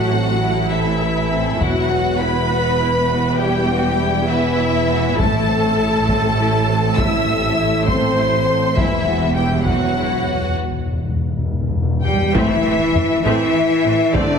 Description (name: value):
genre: cinematic, epic orchestral film score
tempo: 67 BPM (dotted quarters)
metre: 6/8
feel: straight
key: E minor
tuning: A4 = 439 Hz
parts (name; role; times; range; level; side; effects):
- clear studio violin section; melody; 0.0-14.4 s; D5 to E6; -23 LUFS; left 2 dB; none
- rich symphonic violin section; second line; 0.0-14.4 s; A3 to G5; -25 LUFS; left 3 dB; none
- clear symphonic viola section; accompaniment; 0.0-14.4 s; A3 to E5; -23 LUFS; equal; none
- mellow French horn section; sustained chords; 0.0-14.4 s; E3 to G4; -22 LUFS; left 3 dB; none
- rich studio cello section; bass; 0.0-14.4 s; E2 to G3; -23 LUFS; right 3 dB; none
- rich symphonic double bass section; bass; 0.0-14.2 s; E1 to A1; -23 LUFS; right 4 dB; none
- solo taiko drums; drums; 1.6-14.4 s; none; -23 LUFS; equal; none
- timpani; percussion; 1.6-2.5, 8.8-13.2 s; E2 to A2; -23 LUFS; left 2 dB; none
- impact; sound effects; 12.5-14.1 s; none; -34 LUFS; left 1 dB; none
room: moderate scoring stage reverb, RT60 1.9 s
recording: heavily compressed radio sound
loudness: -15 LUFS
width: side -6 dB against mid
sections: 0.0-12.4 A section; 12.4-14.4 B section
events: timpani fill 8.8-12.4; drum fill 11.5-12.4; impact 12.4-14.1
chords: 0.0 Am; 1.6 Emadd9; 5.2 Am; 8.8 Emadd9; 12.4 Am